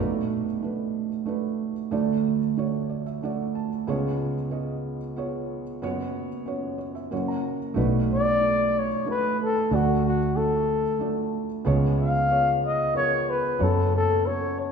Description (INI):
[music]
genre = acoustic folk-pop ballad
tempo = 92 BPM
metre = 3/4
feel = straight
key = B minor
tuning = A4 = 440 Hz
[part]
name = felt-muted upright piano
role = accompaniment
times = 0.0-14.7 s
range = F#1 to A#5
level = -26 LUFS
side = right 4 dB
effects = none
[part]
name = concert harp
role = arpeggios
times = 0.0-0.6 s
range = E4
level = -48 LUFS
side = left 2 dB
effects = none
[part]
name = vintage muted fingered electric bass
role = bass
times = 7.8-14.7 s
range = B1 to F#2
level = -27 LUFS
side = left 1 dB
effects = none
[part]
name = breathy flugelhorn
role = melody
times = 8.1-14.7 s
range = F#4 to E#5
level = -23 LUFS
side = left 3 dB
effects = none
[sound]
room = wet recital hall reverb, RT60 1.6 s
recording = recorded in a church or concert hall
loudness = -23 LUFS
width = side -6 dB against mid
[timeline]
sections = 0.0-7.8 A section; 7.8-14.7 B section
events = none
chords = 0.0 Bm7; 1.9 D; 3.9 C#7; 5.8 F#sus4; 7.1 F#; 7.8 Bm7; 9.7 D; 11.7 C#7; 13.6 F#sus4